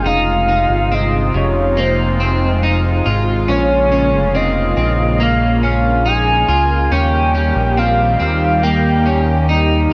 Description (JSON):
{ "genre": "dream pop", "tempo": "70 BPM", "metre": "4/4", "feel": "straight", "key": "F minor", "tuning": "A4 = 440 Hz", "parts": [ { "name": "soft octave-layered synth lead", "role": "melody", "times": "0.0-9.9 s", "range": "Eb4 to Ab5", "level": "-20 LUFS", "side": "equal", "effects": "chorus, tape echo" }, { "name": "lush unison pad", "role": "sustained chords", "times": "0.0-9.9 s", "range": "C3 to G4", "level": "-23 LUFS", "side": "equal", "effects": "chorus" }, { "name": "electric guitar at the edge of break-up", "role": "arpeggios", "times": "0.0-9.9 s", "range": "C3 to F4", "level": "-22 LUFS", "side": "equal", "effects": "lush chorus, tape echo" }, { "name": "fat analog bass", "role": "bass", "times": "0.0-9.9 s", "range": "F1 to Eb2", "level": "-20 LUFS", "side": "equal", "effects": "none" } ], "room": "light reverb", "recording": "none", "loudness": "-15 LUFS", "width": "mono", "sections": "0.0-9.9 A section", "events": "none", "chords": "0.1 Fm7; 3.5 Bbm7; 6.9 Eb" }